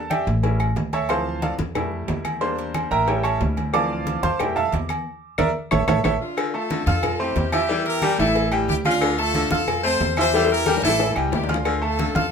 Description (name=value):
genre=latin, salsa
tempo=182 BPM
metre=4/4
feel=straight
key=D minor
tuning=A4 = 440 Hz
part: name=bright grand piano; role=accompaniment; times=0.0-12.3 s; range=E3 to F6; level=-24 LUFS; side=right 2 dB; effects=none
part: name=upright bass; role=bass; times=0.0-12.3 s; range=A1 to F2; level=-26 LUFS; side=equal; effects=none
part: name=agogo bells and timbales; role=percussion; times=0.1-12.2 s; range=none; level=-29 LUFS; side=right 2 dB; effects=none
part: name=claves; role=percussion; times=0.1-11.8 s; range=none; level=-33 LUFS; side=left 7 dB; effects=none
part: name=congas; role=percussion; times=0.1-12.3 s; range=none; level=-29 LUFS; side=equal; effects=none
part: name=cowbell and bongos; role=percussion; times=0.1-12.3 s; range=none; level=-30 LUFS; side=left 8 dB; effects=none
part: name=brilliant horn section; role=melody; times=6.0-12.3 s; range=D4 to C5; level=-24 LUFS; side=left 1 dB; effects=none
part: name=bright baritone saxophone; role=second line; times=6.4-12.3 s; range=C#3 to A3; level=-28 LUFS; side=left 4 dB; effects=none
room=moderate studio ambience, RT60 0.5 s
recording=minimal, uncompressed stereo recording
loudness=-19 LUFS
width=side -6 dB against mid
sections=0.0-6.4 A section; 6.4-12.3 B section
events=grand piano solo 0.0-6.4; drum fill 5.1-6.4, 10.3-11.7; band accent 5.1-6.4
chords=0.4 A7; 1.1 Dm7; 1.8 Fmaj7; 2.4 Em7b5; 3.1 A7; 3.7 Dm7; 4.4 Fmaj7; 5.1 Bb; 5.7 A; 6.4 Dm; 7.0 Fmaj7; 7.7 Edim; 8.4 A7(no3); 9.0 Dm; 9.7 Fmaj7; 10.3 Edim; 11.0 A7; 11.7 Dm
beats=0.11 0.44 0.77 | 1.10 1.43 1.76 2.09 | 2.42 2.75 3.08 3.41 | 3.74 4.07 4.40 4.73 | 5.06 5.39 5.72 6.05 | 6.38 6.71 7.04 7.37 | 7.70 8.03 8.36 8.69 | 9.02 9.35 9.68 10.01 | 10.34 10.67 11.00 11.33 | 11.66 11.99